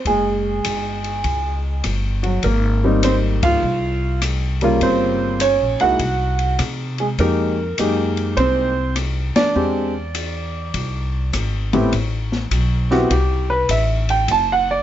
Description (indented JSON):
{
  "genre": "jazz piano trio",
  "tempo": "101 BPM",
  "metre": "4/4",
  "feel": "swing 67% on 8ths",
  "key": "unclear",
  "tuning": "A4 = 436 Hz",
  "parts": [
    { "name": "warm grand piano", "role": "melody", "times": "0.1-14.8 s", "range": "A2 to A5", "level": "-18 LUFS", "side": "right 1 dB", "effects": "none" },
    { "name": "upright bass", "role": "bass", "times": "0.1-14.8 s", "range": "Gb1 to C3", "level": "-21 LUFS", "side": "equal", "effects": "none" },
    { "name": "open jazz drum kit", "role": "drums", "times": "0.1-14.5 s", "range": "hi-hat, kick drum, ride cymbal, rim click, snare drum", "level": "-27 LUFS", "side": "left 4 dB", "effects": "none" }
  ],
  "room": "little or no reverb",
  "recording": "nothing above 7.7 kHz",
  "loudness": "-17 LUFS",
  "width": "side -11 dB against mid",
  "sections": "0.0-11.9 A section; 11.9-14.8 B section",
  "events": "band accent 3.3, 9.3; grand piano solo 11.9-14.8",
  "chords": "0.1 Gbsus2; 2.4 Abmaj9; 4.8 Gm7b5; 6.0 Ab7/C (rootless); 7.2 Fm11; 9.6 E7alt; 11.9 Am9; 14.3 E9sus4 (rootless)"
}